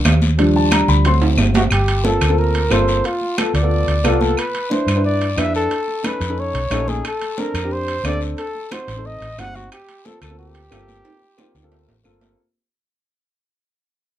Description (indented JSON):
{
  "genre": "Afro-Cuban jazz",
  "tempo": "180 BPM",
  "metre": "4/4",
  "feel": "straight",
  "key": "G minor",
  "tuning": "A4 = 440 Hz",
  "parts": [
    { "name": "dark baby grand piano", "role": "accompaniment", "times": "0.0-12.4 s", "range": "F3 to C6", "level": "-21 LUFS", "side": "left 1 dB", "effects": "none" },
    { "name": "hollow-body short-scale fingered electric bass", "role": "bass", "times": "0.1-12.3 s", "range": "G1 to G2", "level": "-18 LUFS", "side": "equal", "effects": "none" },
    { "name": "claves", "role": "percussion", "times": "0.1-12.2 s", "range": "none", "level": "-29 LUFS", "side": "left 2 dB", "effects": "none" },
    { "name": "congas", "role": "percussion", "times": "0.1-12.4 s", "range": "none", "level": "-26 LUFS", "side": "equal", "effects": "none" },
    { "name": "guiro", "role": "percussion", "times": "0.1-12.4 s", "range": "none", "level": "-32 LUFS", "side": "left 7 dB", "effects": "none" },
    { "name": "timbales", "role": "percussion", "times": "0.1-12.3 s", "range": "none", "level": "-25 LUFS", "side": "right 5 dB", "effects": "none" },
    { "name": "breathy trumpet", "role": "melody", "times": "1.6-12.0 s", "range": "F4 to F#5", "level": "-23 LUFS", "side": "equal", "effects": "none" }
  ],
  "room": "moderate club reverb, RT60 0.5 s",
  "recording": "minimal, uncompressed stereo recording",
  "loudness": "-15 LUFS",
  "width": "side -12 dB against mid",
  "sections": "0.0-1.7 A section; 1.7-12.4 B section",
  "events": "grand piano solo 0.0-1.7; drum fill 1.2-1.7, 11.0-12.4; fade-out 1.7-12.4",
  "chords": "0.4 Ebmaj7; 1.1 D7; 1.7 Gm11; 3.0 Bm7b5; 4.4 Cmaj9; 5.7 Faug7; 7.0 Bbmaj7; 8.4 Adim7; 9.7 Gm11"
}